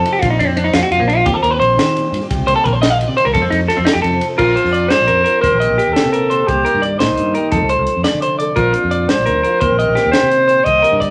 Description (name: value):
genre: highlife guitar band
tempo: 115 BPM (dotted quarters)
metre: 12/8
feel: straight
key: Bb major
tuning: A4 = 445 Hz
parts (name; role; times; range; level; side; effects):
- fingerpicked steel-string acoustic guitar; accompaniment; 0.0-11.1 s; F2 to A4; -27 LUFS; equal; none
- electric guitar at the edge of break-up; arpeggios; 0.0-11.1 s; Bb3 to F5; -19 LUFS; equal; none
- fingered electric bass; bass; 0.0-11.1 s; Bb1 to Eb3; -22 LUFS; equal; none
- tight funk drum kit; drums; 0.1-11.1 s; crash cymbal, hi-hat, kick drum, ride cymbal, snare drum; -24 LUFS; equal; none
- breathy alto saxophone; melody; 4.4-11.0 s; Eb4 to Eb5; -17 LUFS; equal; none
room: moderate large studio reverb, RT60 1.0 s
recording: none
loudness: -14 LUFS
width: mono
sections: 0.0-4.4 A section; 4.4-11.1 B section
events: clean electric guitar solo 0.0-4.4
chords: 0.2 Bbadd9; 1.3 Eb6; 2.3 Cm7; 3.3 F7; 4.4 Bbadd9; 5.4 Eb6; 6.5 Cm7; 7.5 F; 8.6 Bbadd9; 9.6 Eb6